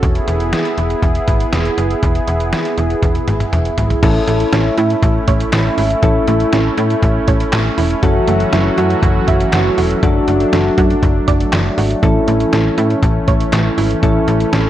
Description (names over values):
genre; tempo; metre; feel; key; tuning
synth-pop; 120 BPM; 4/4; straight; unclear; A4 = 440 Hz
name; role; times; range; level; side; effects
warm analog pad; sustained chords; 0.0-14.7 s; E3 to G#4; -18 LUFS; right 2 dB; wide subtle chorus
slap-like FM bass; bass; 0.0-14.7 s; E1 to A2; -17 LUFS; equal; none
lo-fi sampler-style drum kit; drums; 0.0-14.6 s; crash cymbal, handclaps, hi-hat, kick drum, snare drum, toms; -18 LUFS; equal; none
soft electric-piano-like synth keys; accompaniment; 4.0-14.7 s; C#4 to A4; -18 LUFS; left 3 dB; chorus
soft round pluck; arpeggios; 4.0-14.7 s; E3 to E5; -23 LUFS; right 7 dB; chorus, tape echo
room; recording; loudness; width
moderate plate reverb, RT60 1.3 s, digital ambience; dreamy mix soaked in reverb; -12 LUFS; side -12 dB against mid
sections
0.0-4.0 A section; 4.0-14.7 B section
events
drum fill 3.0-4.0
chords
0.0 E; 4.0 A; 8.0 F#m7; 10.0 D/F#; 12.0 A